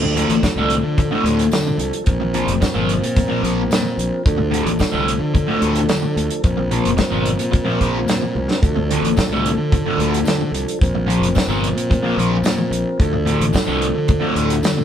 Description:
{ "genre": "psychedelic rock", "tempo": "110 BPM", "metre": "4/4", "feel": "straight", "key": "D minor", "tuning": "A4 = 445 Hz", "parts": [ { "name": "tonewheel organ", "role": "sustained chords", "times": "0.0-14.8 s", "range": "F3 to Bb4", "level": "-24 LUFS", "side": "right 2 dB", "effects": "slow rotary speaker" }, { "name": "fuzz guitar", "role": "riff", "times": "0.0-14.8 s", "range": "D2 to Bb3", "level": "-20 LUFS", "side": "left 1 dB", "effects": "distortion, phaser" }, { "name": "fuzz fingered electric bass", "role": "bass", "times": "0.0-14.8 s", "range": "F1 to D3", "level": "-22 LUFS", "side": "left 1 dB", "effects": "overdrive" }, { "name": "damped 70s drum kit", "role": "drums", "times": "0.2-14.8 s", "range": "hi-hat, kick drum, snare drum, toms", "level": "-20 LUFS", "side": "equal", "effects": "none" }, { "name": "tambourine", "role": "percussion", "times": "0.4-14.8 s", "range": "none", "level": "-35 LUFS", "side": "left 2 dB", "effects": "none" } ], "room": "moderate stone room reverb, RT60 1.2 s", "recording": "band playing live in one room", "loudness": "-16 LUFS", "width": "side -9 dB against mid", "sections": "0.0-14.8 A section", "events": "drum fill 8.3", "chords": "0.0 Dm; 2.1 Bbsus2; 4.3 Dm; 6.4 Bbsus2; 8.6 Dm; 10.8 Bbsus2; 13.0 Dm" }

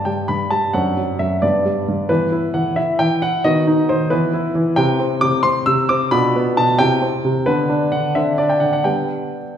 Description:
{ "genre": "classical-period piano sonatina", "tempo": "89 BPM (dotted quarters)", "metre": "6/8", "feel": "rubato", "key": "G major", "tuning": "A4 = 441 Hz", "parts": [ { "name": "warm baby grand piano", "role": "solo", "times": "0.0-9.6 s", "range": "F#2 to E6", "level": "-15 LUFS", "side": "equal", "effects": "none" } ], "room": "wet recital hall reverb, RT60 1.8 s", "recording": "heard from further back in the room", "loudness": "-15 LUFS", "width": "side -9 dB against mid", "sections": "0.0-9.6 A section", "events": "none", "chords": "0.0 G; 0.8 D7/F#; 1.4 G; 2.1 E5; 3.4 B/D#; 4.1 E5; 4.8 C; 6.1 Bm7b5; 6.8 C; 7.5 D6; 8.2 D9; 8.9 G" }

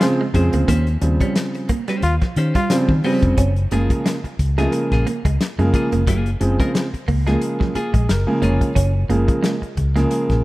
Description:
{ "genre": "funk", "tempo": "89 BPM", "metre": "4/4", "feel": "swing 56% on 16ths", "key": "unclear", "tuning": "A4 = 440 Hz", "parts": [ { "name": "brilliant trombone", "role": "second line", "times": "0.0-2.8 s", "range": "F4", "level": "-27 LUFS", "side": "left 2 dB", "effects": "none" }, { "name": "clean electric guitar", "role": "accompaniment", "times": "0.0-8.7 s", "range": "Bb3 to Db5", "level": "-29 LUFS", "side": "left 2 dB", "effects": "none" }, { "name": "warm upright piano", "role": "stabs", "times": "0.0-10.4 s", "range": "Db3 to Db5", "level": "-21 LUFS", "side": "right 1 dB", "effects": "none" }, { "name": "warm soul drum kit", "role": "drums", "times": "0.0-10.4 s", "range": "hi-hat, kick drum, snare drum", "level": "-22 LUFS", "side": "left 1 dB", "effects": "none" }, { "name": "electric guitar at the edge of break-up", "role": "riff", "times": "0.2-10.1 s", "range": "F3 to Db4", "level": "-28 LUFS", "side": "right 6 dB", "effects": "spring reverb" }, { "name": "vintage muted fingered electric bass", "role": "bass", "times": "0.3-10.4 s", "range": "F1 to Eb3", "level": "-18 LUFS", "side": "equal", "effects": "none" } ], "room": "small room ambience", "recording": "rough home demo mix", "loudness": "-16 LUFS", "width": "side -18 dB against mid", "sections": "0.0-3.4 A section; 3.4-10.4 B section", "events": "upright piano fill 7.4-8.8", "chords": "0.0 Bbm9; 0.7 Eb13; 3.4 Gbmaj9" }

